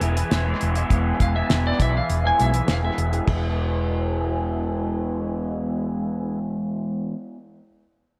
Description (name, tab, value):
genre	psychedelic rock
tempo	101 BPM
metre	4/4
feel	straight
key	E major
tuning	A4 = 440 Hz
part	clean lap steel guitar	melody	0.0-3.1 s	D5 to G#5	-28 LUFS	equal	tape echo
part	overdriven combo organ	sustained chords	0.0-6.4 s	E4 to G#5	-37 LUFS	equal	low-pass filter
part	raw garage guitar	riff	0.0-7.2 s	E3 to E4	-28 LUFS	equal	overdrive, flanger, low-pass filter, tape echo
part	hollow-body short-scale fingered electric bass	bass	0.0-7.1 s	E1 to B1	-27 LUFS	equal	none
part	damped 70s drum kit	drums	0.0-3.4 s	crash cymbal, hi-hat, kick drum, snare drum, toms	-27 LUFS	equal	tape echo
room	light reverb, small room ambience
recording	echo-heavy mix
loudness	-23 LUFS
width	mono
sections	0.0-3.3 A section; 3.3-5.6 B section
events	electric slide guitar solo 0.0-3.3; filter sweep 0.0-3.3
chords	0.0 E